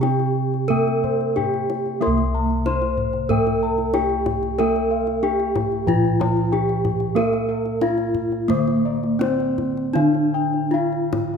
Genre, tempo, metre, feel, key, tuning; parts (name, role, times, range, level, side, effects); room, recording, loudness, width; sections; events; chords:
Javanese gamelan; 73-93 BPM; 4/4; straight; C slendro; A4 = 439 Hz
gamelan-type bronze metallophone; melody; 0.0-11.4 s; Bb3-45c to C5; -22 LUFS; equal
gamelan-type bronze metallophone; accompaniment; 0.0-11.4 s; C3 to Bb3-45c; -26 LUFS; right 4 dB
gamelan-type bossed gongs; arpeggios; 0.0-11.2 s; Bb4-45c to C6; -26 LUFS; left 8 dB
gamelan-type bossed gongs; bass; 0.0-10.8 s; C2 to Bb4-45c; -26 LUFS; left 1 dB
kendang; percussion; 0.0-11.4 s; -29 LUFS; left 3 dB
moderate scoring stage reverb, RT60 1.8 s; minimal, uncompressed stereo recording; -18 LUFS; side -6 dB against mid
0.0-2.0 A section; 2.0-11.4 B section